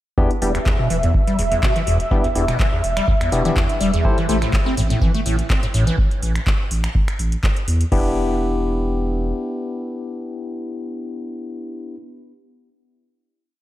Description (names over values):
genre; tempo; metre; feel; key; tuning
acid house; 124 BPM; 4/4; swing 54% on 16ths; E minor; A4 = 441 Hz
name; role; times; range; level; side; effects
lush unison pad; sustained chords; 0.2-6.0 s; E5; -25 LUFS; equal; chorus, sidechain pumping
liquid acid bass; riff; 0.2-8.1 s; E2 to C4; -22 LUFS; equal; phaser, tube saturation, lush chorus, sidechain pumping, tape echo
barky tine electric piano; stabs; 0.2-4.4, 7.9-11.9 s; B3 to C5; -24 LUFS; left 2 dB; medium stereo tremolo, tape echo
electronic kick drum; drums; 0.2-8.0 s; none; -19 LUFS; equal; none
booming analog drum machine; drums; 0.3-8.0 s; crash cymbal, finger snaps, handclaps, hi-hat; -28 LUFS; equal; none
saturated sub bass; bass; 0.4-9.3 s; E1 to E2; -22 LUFS; equal; sidechain pumping
room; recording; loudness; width
moderate lush hall reverb, RT60 1.7 s, digital ambience; dreamy mix soaked in reverb; -17 LUFS; side -14 dB against mid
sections
0.2-7.9 groove; 7.9-11.8 final chord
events
none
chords
0.2 Em7; 4.0 A5; 7.9 Em7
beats
| 0.18 0.66 1.15 1.63 | 2.11 2.60 3.08 3.56 | 4.05 4.53 5.02 5.50 | 5.98 6.47 6.95 7.43 | 7.92 8.40 8.89 9.37 | 9.85 10.34 10.82 11.31